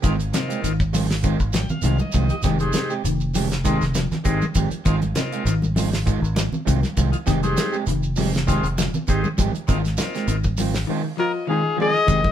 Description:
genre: afrobeat.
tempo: 100 BPM.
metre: 4/4.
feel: swing 53% on 16ths.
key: unclear.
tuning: A4 = 444 Hz.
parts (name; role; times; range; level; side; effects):
combo organ; accompaniment; 0.0-12.1 s; Ab3 to Ab5; -28 LUFS; left 2 dB; phaser.
electric guitar at the edge of break-up; arpeggios; 0.0-12.3 s; C3 to F3; -28 LUFS; left 5 dB; none.
electric guitar at the edge of break-up; stabs; 0.0-12.3 s; Eb3 to G4; -27 LUFS; right 6 dB; spring reverb.
fingered electric bass; bass; 0.0-12.3 s; F1 to C2; -23 LUFS; equal; none.
damped 70s drum kit; drums; 0.0-12.3 s; hi-hat, kick drum, snare drum; -24 LUFS; equal; none.
congas; percussion; 0.0-12.3 s; none; -27 LUFS; equal; none.
shekere; percussion; 0.0-12.2 s; none; -31 LUFS; right 4 dB; none.
clear trumpet; melody; 11.2-12.3 s; Ab4 to Eb5; -21 LUFS; left 5 dB; none.
steel pan; second line; 11.2-12.3 s; Eb4 to Ab4; -24 LUFS; left 2 dB; none.
room: light reverb.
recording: band playing live in one room.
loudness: -19 LUFS.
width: side -10 dB against mid.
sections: 0.0-12.1 A section.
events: transistor combo organ fill 1.2-2.4, 10.9-12.1.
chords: 0.0 Ab6; 2.4 Fm9; 4.9 Ab6; 7.3 Fm9; 9.7 Ab6.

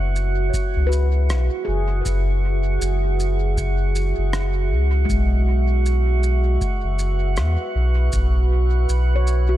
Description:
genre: ambient dub.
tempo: 79 BPM.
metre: 4/4.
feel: swing 60% on 16ths.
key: unclear.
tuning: A4 = 440 Hz.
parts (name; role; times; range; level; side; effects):
deep dark ambient pad; sustained chords; 0.0-9.6 s; F#4 to E5; -27 LUFS; right 4 dB; chorus, built-in reverb.
handpan; arpeggios; 0.0-9.6 s; G#3 to C#5; -31 LUFS; left 4 dB; dub echo.
warm sub bass; bass; 0.0-9.6 s; F#1 to E2; -18 LUFS; equal; none.
drifting glass-harmonics texture; texture; 0.0-9.6 s; F#4 to F#5; -31 LUFS; right 2 dB; chorus, built-in reverb.
shaker and rim click; drums; 0.2-9.5 s; none; -32 LUFS; equal; dub echo.
electronic kick drum; drums; 0.5-8.3 s; none; -26 LUFS; equal; none.
room: studio reverb.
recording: none.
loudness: -18 LUFS.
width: side -13 dB against mid.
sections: 0.0-9.6 A section.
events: none.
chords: 0.0 F#sus2.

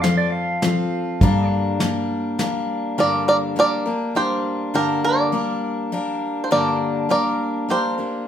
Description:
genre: honky-tonk and classic country.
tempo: 102 BPM.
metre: 3/4.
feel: straight.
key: G minor.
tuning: A4 = 439 Hz.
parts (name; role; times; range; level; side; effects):
pedal steel guitar; second line; 0.0-1.5 s; D5 to F5; -25 LUFS; right 2 dB; none.
picked steel-string acoustic guitar; accompaniment; 0.0-8.3 s; G2 to Bb4; -22 LUFS; left 2 dB; none.
vintage muted fingered electric bass; bass; 0.0-2.5 s; F2 to G2; -24 LUFS; equal; none.
soft brush drum kit; drums; 0.0-2.5 s; hi-hat, kick drum, snare drum; -22 LUFS; equal; none.
bluegrass banjo; melody; 3.0-8.3 s; G4 to D5; -20 LUFS; right 2 dB; none.
room: moderate large studio reverb, RT60 0.9 s.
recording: minimal, uncompressed stereo recording.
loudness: -18 LUFS.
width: side -9 dB against mid.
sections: 0.0-3.0 A section; 3.0-8.3 B section.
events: pedal steel guitar solo 0.0-3.0.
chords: 0.0 F; 1.2 Gm.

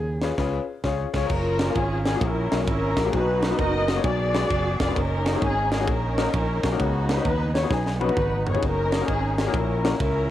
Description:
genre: uptempo gospel.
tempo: 131 BPM.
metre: 4/4.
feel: swing 65% on 8ths.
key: F# major.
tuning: A4 = 440 Hz.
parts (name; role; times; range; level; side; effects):
mellow alto saxophone; melody; 0.0-0.9 s; G#4; -34 LUFS; equal; cassette tape.
clear grand piano; accompaniment; 0.0-10.3 s; A#2 to C#5; -29 LUFS; left 7 dB; cassette tape.
fingered electric bass; bass; 0.0-10.3 s; E#1 to D#2; -26 LUFS; right 1 dB; none.
tight funk drum kit; drums; 0.2-10.1 s; crash cymbal, hi-hat, kick drum, ride cymbal, snare drum, toms; -27 LUFS; right 1 dB; cassette tape.
muted studio string section; melody; 1.2-10.3 s; B3 to D#5; -25 LUFS; equal; cassette tape, analog delay.
room: small room ambience.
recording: home recording on cassette.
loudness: -21 LUFS.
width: side -12 dB against mid.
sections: 0.0-1.3 A section; 1.3-10.3 B section.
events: band accent 0.4-1.3; drum fill 7.7-8.6.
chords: 0.0 C#7; 1.3 F#maj7; 2.2 F#7/A#; 3.1 Bmaj7; 4.1 Bm6; 5.0 F#69; 6.8 C#9sus4; 8.6 F#69; 9.5 F#7/A# (rootless).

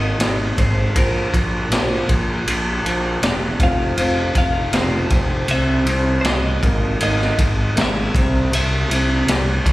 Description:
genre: quiet-loud alternative rock.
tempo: 80 BPM.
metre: 4/4.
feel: straight.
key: unclear.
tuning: A4 = 441 Hz.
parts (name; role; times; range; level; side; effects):
twelve-string electric guitar; melody; 0.0-9.2 s; Bb4 to F5; -27 LUFS; left 1 dB; plate reverb, slapback echo, analog delay.
fingerpicked old ladder-braced acoustic guitar; arpeggios; 0.0-9.7 s; Bb2 to F4; -24 LUFS; right 1 dB; slapback echo.
fuzz picked electric bass; bass; 0.0-9.7 s; E1 to C2; -21 LUFS; equal; overdrive.
raw garage drum kit; drums; 0.2-9.7 s; kick drum, ride cymbal, snare drum; -19 LUFS; equal; none.
room: light reverb.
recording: live gig heard through the venue's PA, recital hall reverb.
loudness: -16 LUFS.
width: side -17 dB against mid.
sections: 0.0-9.7 A section.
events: none.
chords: 0.0 Absus2; 1.0 Bb; 3.6 F5; 5.5 C; 6.6 Absus2; 8.1 C.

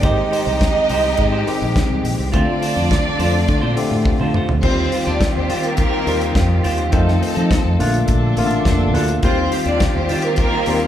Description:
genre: disco.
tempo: 104 BPM.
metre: 4/4.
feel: straight.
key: unclear.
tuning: A4 = 440 Hz.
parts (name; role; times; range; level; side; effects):
warm studio violin section; second line; 0.0-10.9 s; Bb3 to Eb5; -21 LUFS; right 2 dB; none.
barky tine electric piano; accompaniment; 0.0-10.9 s; C3 to G4; -22 LUFS; left 2 dB; none.
semi-hollow electric guitar; accompaniment; 0.0-10.9 s; C4 to C5; -26 LUFS; right 3 dB; none.
clear symphonic string section; sustained chords; 0.0-10.9 s; Bb2 to A4; -24 LUFS; left 1 dB; none.
fingered electric bass; bass; 0.0-10.9 s; F1 to F3; -21 LUFS; equal; none.
damped 70s drum kit; drums; 0.0-10.9 s; crash cymbal, hi-hat, kick drum, snare drum, toms; -21 LUFS; equal; none.
room: moderate large studio reverb, RT60 1.3 s.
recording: band playing live in one room.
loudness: -15 LUFS.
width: side -11 dB against mid.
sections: 0.0-4.6 A section; 4.6-10.9 B section.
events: drum fill 4.1-4.6.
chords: 0.0 Abmaj7; 2.3 Dm7; 4.6 Eb69; 6.9 F7; 7.8 Bbmaj7; 9.2 Eb69.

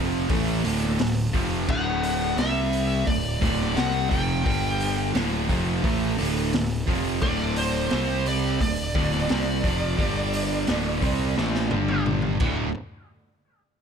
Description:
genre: quiet-loud alternative rock.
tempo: 87 BPM.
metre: 4/4.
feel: straight.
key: unclear.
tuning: A4 = 444 Hz.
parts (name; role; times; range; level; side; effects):
crunchy overdriven guitar; riff; 0.0-12.7 s; D2 to C4; -30 LUFS; left 11 dB; none.
distorted electric guitar; riff; 0.0-12.7 s; D2 to C4; -32 LUFS; equal; overdrive.
fuzz guitar; riff; 0.0-12.7 s; D2 to F#4; -28 LUFS; right 11 dB; distortion.
fuzz picked electric bass; bass; 0.0-12.7 s; D1 to C2; -29 LUFS; equal; overdrive.
raw garage drum kit; drums; 0.3-12.6 s; crash cymbal, hi-hat, kick drum, snare drum, toms; -28 LUFS; equal; none.
smooth overdriven lead guitar; melody; 1.7-12.0 s; C5 to G5; -29 LUFS; equal; none.
room: light reverb, small room ambience.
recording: none.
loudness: -22 LUFS.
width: side -7 dB against mid.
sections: 0.0-12.8 A section; 12.8-13.8 B section.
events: drum fill 11.4-12.8.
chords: 0.0 D; 2.4 C5; 3.1 D5; 4.5 G5; 5.1 D5; 7.9 C5; 8.6 D5; 10.0 G5; 10.7 D5; 11.7 G5; 12.4 D; 12.8 N.C..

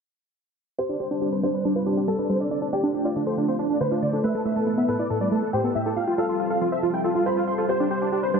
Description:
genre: trance.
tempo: 139 BPM.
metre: 4/4.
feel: straight.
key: unclear.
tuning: A4 = 439 Hz.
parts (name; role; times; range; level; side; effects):
supersaw chords; melody; 0.8-8.4 s; D4 to C6; -26 LUFS; equal; wide subtle chorus, low-pass filter, ping-pong delay.
bright grand piano; second line; 0.8-8.4 s; G4 to C5; -30 LUFS; equal; ping-pong delay.
analog string pad; sustained chords; 0.8-8.4 s; G3 to C5; -28 LUFS; left 1 dB; ensemble chorus.
analog pluck; arpeggios; 0.8-8.4 s; A2 to F5; -27 LUFS; right 2 dB; chorus, ping-pong delay.
room: moderate huge ambient reverb, RT60 4.2 s.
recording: low-pass filter, nothing above 10.4 kHz.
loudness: -22 LUFS.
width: side -5 dB against mid.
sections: 0.8-8.4 A section.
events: filter sweep on supersaw synth 0.8-8.4; filter sweep on synth pluck 0.8-8.4; filter sweep on analog synth pad 0.8-8.4; filter sweep 0.8-8.4.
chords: 0.8 Gsus4; 2.5 Dm7; 4.2 Asus2; 6.0 Fadd9; 7.7 Gsus4.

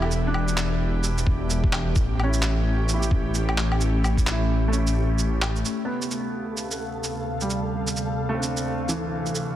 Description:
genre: future garage.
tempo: 130 BPM.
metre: 4/4.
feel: swing 61% on 16ths.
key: D dorian.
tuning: A4 = 440 Hz.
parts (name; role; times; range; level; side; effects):
felt-muted upright piano; accompaniment; 0.0-9.6 s; E3 to B4; -30 LUFS; right 1 dB; sidechain pumping, analog delay.
ethereal airy pad; sustained chords; 0.0-9.6 s; D2 to F5; -29 LUFS; left 2 dB; ensemble chorus, built-in reverb, sidechain pumping.
dark detuned saw bass; bass; 0.0-5.6 s; E1 to A1; -23 LUFS; equal; tube saturation, sidechain pumping.
electronic woodblock, shaker and handclaps; drums; 0.0-9.5 s; none; -29 LUFS; right 1 dB; overdrive, small room ambience.
electronic kick drum; drums; 1.3-4.2 s; none; -22 LUFS; equal; overdrive, small room ambience.
flickering grainy texture; texture; 6.1-9.6 s; A4; -35 LUFS; equal; built-in reverb.
room: light reverb.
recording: dense, heavily limited modern master.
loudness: -22 LUFS.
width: side -12 dB against mid.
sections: 0.0-5.7 A section; 5.7-9.6 B section.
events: kick drops out 4.7-5.7.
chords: 0.0 Em; 2.0 A7; 5.7 Dm7.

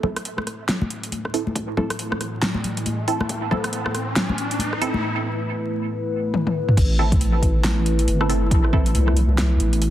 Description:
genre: deep dubstep.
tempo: 138 BPM.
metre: 4/4.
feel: swing 60% on 16ths, half-time.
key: A minor.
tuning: A4 = 439 Hz.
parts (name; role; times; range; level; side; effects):
dark analog pad; sustained chords; 0.0-9.9 s; A3 to B4; -27 LUFS; equal; chorus, phaser.
filtered dub chord stab; stabs; 0.0-8.9 s; C4 to A4; -28 LUFS; right 3 dB; phaser, dub echo.
electronic kick drum; drums; 0.0-8.8 s; none; -21 LUFS; equal; high-pass filter on kick.
congas; percussion; 0.0-5.0 s; none; -28 LUFS; left 2 dB; dub echo.
riser; sound effects; 1.7-5.0 s; none; -31 LUFS; left 1 dB; none.
deep house drum kit; drums; 0.2-9.9 s; crash cymbal, hi-hat, rim click, snare drum, toms; -25 LUFS; equal; soft clipping on snare.
deep soft wobble bass; bass; 6.8-9.9 s; G1 to C2; -19 LUFS; equal; chorus.
room: light reverb, digital ambience.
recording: dense, heavily limited modern master, vinyl crackle.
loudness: -19 LUFS.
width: side -12 dB against mid.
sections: 0.0-6.8 A section; 6.8-9.9 B section.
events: build-up 0.0-6.8; riser 1.7-5.0; drum fill 6.3-6.8; drop 6.8-9.9.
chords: 0.0 A5; 6.8 Am.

